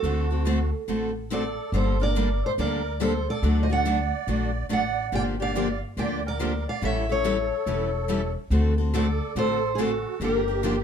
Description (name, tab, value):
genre	acoustic string swing (jazz manouche)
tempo	142 BPM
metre	4/4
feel	swing 64% on 8ths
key	G minor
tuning	A4 = 440 Hz
part	picked steel-string acoustic guitar	melody	0.0-10.8 s	Ab4 to G5	-28 LUFS	right 1 dB	plate reverb
part	musette accordion	second line	0.0-10.8 s	Eb4 to D5	-34 LUFS	right 6 dB	none
part	picked steel-string acoustic guitar	accompaniment	0.0-10.8 s	D3 to A4	-30 LUFS	left 5 dB	none
part	picked steel-string acoustic guitar	accompaniment	0.0-10.8 s	D3 to A4	-31 LUFS	right 3 dB	none
part	upright bass	bass	0.0-10.8 s	E1 to D2	-27 LUFS	equal	none
room	moderate studio reverb, RT60 0.8 s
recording	dark, warm production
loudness	-23 LUFS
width	side -8 dB against mid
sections	0.0-10.8 A section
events	none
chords	0.0 D7; 1.7 Gmadd9; 3.4 D; 5.1 Gm7; 6.8 A7; 8.5 D7; 10.2 Gm7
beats	| 0.04 0.46 0.89 1.31 | 1.73 2.16 2.58 3.01 | 3.43 3.85 4.28 4.70 | 5.12 5.55 5.97 6.40 | 6.82 7.24 7.67 8.09 | 8.51 8.94 9.36 9.78 | 10.21 10.63